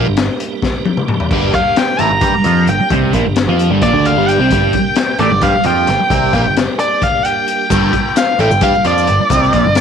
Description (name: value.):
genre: psychedelic rock.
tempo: 263 BPM (eighths).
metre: 7/8.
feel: straight.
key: G minor.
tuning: A4 = 440 Hz.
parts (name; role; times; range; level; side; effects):
tonewheel organ; sustained chords; 0.0-9.8 s; G3 to Bb4; -25 LUFS; right 12 dB; slow rotary speaker, overdrive, chorus vibrato.
fuzz guitar; riff; 0.0-9.8 s; G2 to G4; -15 LUFS; right 1 dB; distortion, phaser.
picked electric bass; bass; 0.0-9.8 s; G1 to G2; -18 LUFS; right 1 dB; none.
crunchy breakbeat drum kit; drums; 0.2-9.8 s; crash cymbal, hi-hat, kick drum, snare drum, toms; -18 LUFS; left 4 dB; none.
octave-fuzz lead guitar; melody; 1.5-9.8 s; D5 to Bb5; -15 LUFS; left 1 dB; distortion, slapback echo.
maracas; percussion; 7.7-9.8 s; none; -32 LUFS; left 10 dB; none.
room: light reverb, small room ambience.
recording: 1960s-style stereo with parts hard left and right.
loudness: -11 LUFS.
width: side -7 dB against mid.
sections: 0.0-9.8 A section.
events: lead electric guitar solo 0.0-9.8; drum fill 0.6-1.3.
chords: 0.0 Gm.